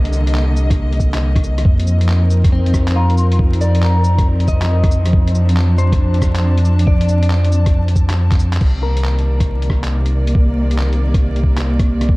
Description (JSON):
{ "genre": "future garage", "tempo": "138 BPM", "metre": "4/4", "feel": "swing 65% on 16ths", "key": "C dorian", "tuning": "A4 = 444 Hz", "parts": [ { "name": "clear studio string section", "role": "sustained chords", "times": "0.0-12.2 s", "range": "C3 to A5", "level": "-21 LUFS", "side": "equal", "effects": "sidechain pumping" }, { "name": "warm sub bass", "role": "bass", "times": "0.0-12.2 s", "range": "C2 to F2", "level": "-15 LUFS", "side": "equal", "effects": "tube saturation, sidechain pumping" }, { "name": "lo-fi sampler-style drum kit", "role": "drums", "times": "0.1-12.1 s", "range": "cabasa, crash cymbal, handclaps, hi-hat, rim click", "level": "-28 LUFS", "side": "equal", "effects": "none" }, { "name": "electronic kick drum", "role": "drums", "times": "0.7-12.2 s", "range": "none", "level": "-15 LUFS", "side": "equal", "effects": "none" }, { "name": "clean electric guitar", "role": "accompaniment", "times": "2.5-9.8 s", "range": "C4 to Eb5", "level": "-25 LUFS", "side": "left 2 dB", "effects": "analog chorus, sidechain pumping, low-pass filter, analog delay" }, { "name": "mellow wooden flute", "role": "melody", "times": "3.0-4.3 s", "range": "Bb5 to C6", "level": "-26 LUFS", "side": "equal", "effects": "tape echo" } ], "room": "little or no reverb", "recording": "dark, warm production, vinyl crackle", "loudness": "-12 LUFS", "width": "side -22 dB against mid", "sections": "0.0-8.6 A section; 8.6-12.2 B section", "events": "drum fill 8.3-8.6", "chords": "0.0 Cm9; 1.7 F7sus4; 8.6 Cm9" }